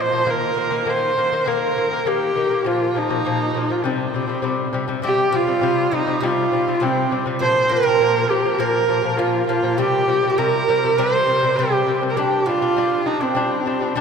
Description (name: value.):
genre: mongolian traditional, Mongolian folk.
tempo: 101 BPM.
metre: 4/4.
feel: straight.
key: C yu mode.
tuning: A4 = 441 Hz.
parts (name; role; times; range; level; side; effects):
bright horsehead fiddle; melody; 0.0-14.0 s; C4 to C5; -19 LUFS; right 1 dB; none.
lute; arpeggios; 0.0-14.0 s; Bb2 to D4; -22 LUFS; left 4 dB; none.
guzheng; second line; 5.0-14.0 s; C4 to C5; -25 LUFS; right 6 dB; none.
room: wet cathedral reverb, RT60 4.8 s.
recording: recorded in a church or concert hall.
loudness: -17 LUFS.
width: side -6 dB against mid.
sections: 0.0-5.0 A section; 5.0-14.0 B section.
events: none.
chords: 0.3 Eb5; 2.7 Bb5; 3.8 C5; 7.4 Bb5; 9.8 C5; 12.2 G5.